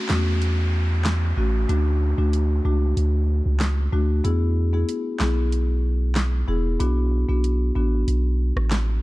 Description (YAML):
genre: dancehall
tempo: 94 BPM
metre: 4/4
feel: straight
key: A major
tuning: A4 = 442 Hz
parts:
  - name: downlifter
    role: sound effects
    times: 0.0-4.2 s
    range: none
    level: -35 LUFS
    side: right 1 dB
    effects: none
  - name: marimba with medium mallets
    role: accompaniment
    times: 0.1-8.0 s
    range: A3 to G#4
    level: -27 LUFS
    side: left 2 dB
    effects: none
  - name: punchy sub bass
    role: bass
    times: 0.1-9.0 s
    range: E1 to E2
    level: -20 LUFS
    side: equal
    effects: none
  - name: pop drum kit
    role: drums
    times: 0.1-8.9 s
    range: handclaps, hi-hat, rim click, snare drum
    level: -28 LUFS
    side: equal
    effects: none
room: digital ambience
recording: dark, warm production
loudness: -20 LUFS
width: side -19 dB against mid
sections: 0.0-9.0 A section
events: break 0.0-9.0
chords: 0.0 A6; 1.7 D; 4.2 E; 6.8 Bm